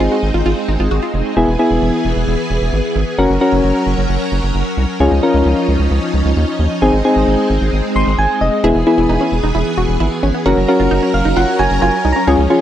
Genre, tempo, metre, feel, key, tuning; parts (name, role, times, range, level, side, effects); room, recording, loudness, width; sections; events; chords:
synth-pop; 132 BPM; 4/4; straight; A4 = 440 Hz
soft electric-piano-like synth keys; accompaniment; 0.0-12.6 s; B3 to C6; -15 LUFS; left 1 dB; chorus
string machine, violins; sustained chords; 0.0-12.6 s; E3 to Bb4; -19 LUFS; equal; ensemble chorus
wide unison pluck; arpeggios; 0.0-1.2, 8.6-12.6 s; B3 to G#4; -20 LUFS; right 1 dB; analog delay
rubbery square bass; bass; 0.0-12.5 s; E1 to Eb2; -16 LUFS; equal
light reverb; dry, gritty hardware recording; -12 LUFS; side -11 dB against mid
0.0-1.4 A section; 1.4-12.6 A section
synth keys fill 7.7-8.6, 10.9-12.3
0.0 Ab; 1.4 E; 3.2 Gb; 5.0 Dbadd9; 6.8 Ab; 8.6 E; 10.5 Gb